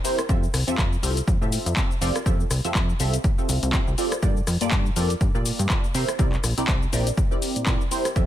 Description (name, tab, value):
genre	filtered disco house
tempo	122 BPM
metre	4/4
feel	swing 56% on 16ths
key	F major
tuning	A4 = 440 Hz
part	funky polysynth comp	accompaniment	0.0-8.3 s	Bb3 to E5	-28 LUFS	right 1 dB	chorus, phaser, cassette tape, sidechain pumping
part	punchy analog drum machine	drums	0.0-8.3 s	handclaps, hi-hat, rim click, shaker	-28 LUFS	left 2 dB	overdrive, sidechain pumping on perc, sidechain pumping on hats
part	plucky analog bass	bass	0.3-8.3 s	F1 to C3	-25 LUFS	equal	sidechain pumping
part	electronic kick drum	drums	0.3-8.3 s	none	-23 LUFS	equal	none
room	little or no reverb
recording	none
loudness	-20 LUFS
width	side -12 dB against mid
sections	0.0-8.3 A section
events	none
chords	0.3 Fmaj7; 4.2 Gm7; 5.9 C7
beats	| 0.29 0.78 1.27 1.77 | 2.26 2.75 3.24 3.73 | 4.23 4.72 5.21 5.70 | 6.19 6.68 7.18 7.67 | 8.16